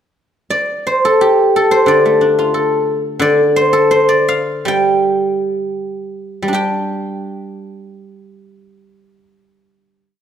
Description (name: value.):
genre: chinese traditional, Chinese solo plucked strings.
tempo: 54-90 BPM.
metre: 2/4.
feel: rubato.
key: G shang mode.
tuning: A4 = 439 Hz.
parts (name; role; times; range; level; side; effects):
guzheng; solo; 0.5-10.2 s; D3 to G5; -13 LUFS; equal; none.
room: moderate recital hall reverb, RT60 1.8 s.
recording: none.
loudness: -12 LUFS.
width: side -8 dB against mid.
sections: 0.5-6.5 A section; 6.5-10.2 final chord.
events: slowing down 3.2-6.5.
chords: none.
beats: | 0.48 1.19 | 1.88 2.55 | 3.22 3.92 | 4.68 5.54 | 6.55 7.64 | 8.71 9.76.